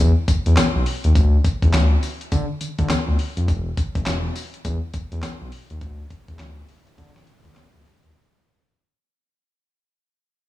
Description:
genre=R&B, new jack swing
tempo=103 BPM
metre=4/4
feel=swing 62% on 16ths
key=E minor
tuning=A4 = 440 Hz
part: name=smooth synth bass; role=bass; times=0.0-8.1 s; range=E1 to D3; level=-19 LUFS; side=equal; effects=none
part: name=dusty soul sampler-style drum kit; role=drums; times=0.3-8.1 s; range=handclaps, hi-hat, kick drum, snare drum, tambourine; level=-22 LUFS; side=equal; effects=vintage 12-bit sampler grit, gated reverb
room=little or no reverb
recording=small room ambience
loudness=-18 LUFS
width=side -16 dB against mid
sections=0.0-8.1 A section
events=fade-out 0.0-8.1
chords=none

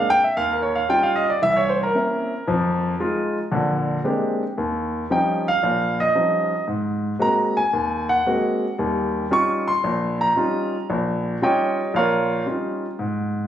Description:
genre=solo jazz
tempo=114 BPM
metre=4/4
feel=swing 69% on 8ths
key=Eb mixolydian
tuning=A4 = 442 Hz
part: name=warm concert grand piano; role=solo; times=0.0-13.5 s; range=Bb1 to Db6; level=-19 LUFS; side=equal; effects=none
room=moderate large studio reverb, RT60 1.4 s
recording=recorded on a phone in the room, studio ambience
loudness=-19 LUFS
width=side -10 dB against mid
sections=0.0-4.6 A section; 4.6-13.5 A section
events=grand piano solo 0.0-13.5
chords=0.4 Eb9; 1.4 C7b9; 2.5 Fm7; 3.5 Bb13; 4.6 Eb9; 6.7 Ab9; 8.8 Eb9

